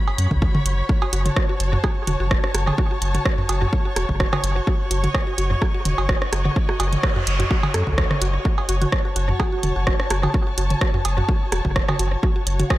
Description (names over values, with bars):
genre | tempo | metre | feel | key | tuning
minimal techno | 127 BPM | 4/4 | swing 54% on 16ths | F# dorian | A4 = 439 Hz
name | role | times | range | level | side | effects
dark chamber string section | texture | 0.0-12.8 s | F#4 to B5 | -28 LUFS | left 1 dB | sidechain pumping
booming analog drum machine | percussion | 0.1-12.8 s | cowbell, rim click, toms | -26 LUFS | right 2 dB | dub echo
saturated sub bass | bass | 0.2-12.6 s | E1 to F#2 | -22 LUFS | equal | sidechain pumping
house drum kit | drums | 0.2-12.8 s | hi-hat, rim click | -26 LUFS | right 1 dB | overdrive, tape echo
electronic kick drum | drums | 0.3-12.8 s | none | -21 LUFS | equal | overdrive
mallet-like synth pluck | riff | 1.0-12.7 s | F#4 to C#5 | -31 LUFS | equal | chorus, sidechain pumping, dub echo
noise sweep | sound effects | 6.9-8.5 s | none | -31 LUFS | right 2 dB | none
breathy flute-like synth lead | melody | 9.3-9.9 s | F#4 | -31 LUFS | right 1 dB | ensemble chorus, tape echo
room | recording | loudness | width
light reverb | echo-heavy mix | -18 LUFS | side -16 dB against mid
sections
0.0-12.8 A section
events
noise sweep 6.9-8.5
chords
0.0 F#m